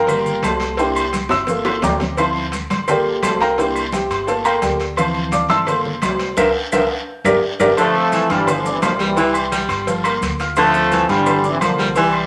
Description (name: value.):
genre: latin, salsa.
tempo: 172 BPM.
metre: 4/4.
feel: straight.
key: unclear.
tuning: A4 = 441 Hz.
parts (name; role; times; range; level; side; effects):
dark grand piano; accompaniment; 0.0-12.3 s; E3 to F6; -22 LUFS; equal; none.
upright bass; bass; 0.0-12.3 s; G1 to D2; -32 LUFS; equal; none.
agogo bells and timbales; percussion; 0.1-12.3 s; none; -25 LUFS; equal; none.
claves; percussion; 0.1-12.3 s; none; -31 LUFS; equal; none.
congas; percussion; 0.1-12.3 s; none; -30 LUFS; equal; none.
cowbell and bongos; percussion; 0.1-12.1 s; none; -28 LUFS; equal; none.
guiro; percussion; 0.1-12.3 s; none; -34 LUFS; equal; none.
maracas; percussion; 0.1-12.1 s; none; -40 LUFS; equal; none.
bright trombone section; melody; 7.8-12.3 s; C3 to A3; -20 LUFS; equal; none.
clear baritone saxophone; second line; 7.8-12.1 s; D3 to G3; -22 LUFS; equal; none.
room: wet studio reverb, RT60 0.8 s.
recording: none.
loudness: -18 LUFS.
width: mono.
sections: 0.0-7.8 A section; 7.8-12.3 B section.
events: grand piano solo 0.0-7.8; drum fill 1.3-2.2, 6.4-7.8; band accent 6.4-7.8.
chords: 0.1 Gm7; 0.8 C7; 1.5 Gm7; 2.2 Dm9; 2.9 Gm7; 3.6 C7; 4.3 Gm7; 5.0 Dm9; 5.7 Gm7; 6.4 C7; 7.1 Gm; 7.8 Dm9; 8.5 Gm7; 9.2 C; 9.9 Gm7; 10.6 Dm9; 11.3 Gm7.